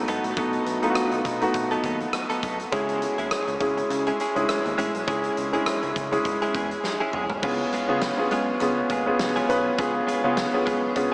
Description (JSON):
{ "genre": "1980s-style pop", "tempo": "102 BPM", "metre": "4/4", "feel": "swing 55% on 16ths", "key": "unclear", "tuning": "A4 = 440 Hz", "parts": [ { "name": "warm grand piano", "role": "accompaniment", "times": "0.0-11.1 s", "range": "G#3 to B4", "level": "-24 LUFS", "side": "equal", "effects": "none" }, { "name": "fat analog bass", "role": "bass", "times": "0.0-11.1 s", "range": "G#1 to C#3", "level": "-34 LUFS", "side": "equal", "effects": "none" }, { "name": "direct-recorded clean electric guitar", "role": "riff", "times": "0.1-11.1 s", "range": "F#3 to A4", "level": "-30 LUFS", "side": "right 1 dB", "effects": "wide subtle chorus, diffuse ambient delay" }, { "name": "huge arena drum kit", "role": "drums", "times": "0.1-11.1 s", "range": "crash cymbal, hi-hat, kick drum, rim click, snare drum, toms", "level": "-31 LUFS", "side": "equal", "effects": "none" } ], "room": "wet huge ambient reverb, RT60 8.0 s", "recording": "dreamy mix soaked in reverb, small speaker sound", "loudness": "-22 LUFS", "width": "side -27 dB against mid", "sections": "0.0-7.4 A section; 7.4-11.1 B section", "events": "drum fill 6.8-7.4", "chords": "0.0 B7; 2.7 C#m; 7.4 C#7" }